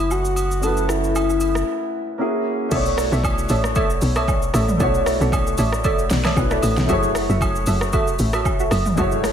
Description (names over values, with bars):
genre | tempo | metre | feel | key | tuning
amapiano | 115 BPM | 4/4 | swing 55% on 16ths | B dorian | A4 = 440 Hz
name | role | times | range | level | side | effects
breathy flute-like synth lead | melody | 0.0-2.5 s | E4 to A4 | -22 LUFS | left 2 dB | chorus, ping-pong delay
dark baby grand piano | accompaniment | 0.0-9.3 s | G#3 to G#5 | -24 LUFS | left 1 dB | wide subtle chorus
punchy sub bass | bass | 0.0-1.6 s | F#1 | -23 LUFS | equal | none
deep house drum kit | drums | 0.1-9.3 s | crash cymbal, hi-hat, kick drum, rim click, shaker, snare drum, toms | -24 LUFS | equal | overdrive
woodblock and agogo bells | percussion | 0.1-9.1 s | none | -28 LUFS | right 2 dB | none
deep mellow chord stab | stabs | 2.7-9.1 s | F#4 to E5 | -25 LUFS | right 2 dB | chorus, ping-pong delay
tight log drum bass | bass | 2.7-9.3 s | F#1 to B1 | -22 LUFS | equal | none
room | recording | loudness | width
moderate lush hall reverb, RT60 2.1 s | dreamy mix soaked in reverb | -17 LUFS | side -8 dB against mid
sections
0.0-2.7 A section; 2.7-9.3 B section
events
break 1.7-2.7; drop 2.7-9.3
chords
0.0 F#m7; 2.2 F#7; 2.7 Bm11; 6.9 F#m7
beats
0.11 | 0.63 1.15 1.67 2.19 | 2.72 3.24 3.76 4.28 | 4.80 5.32 5.85 6.37 | 6.89 7.41 7.93 8.46 | 8.98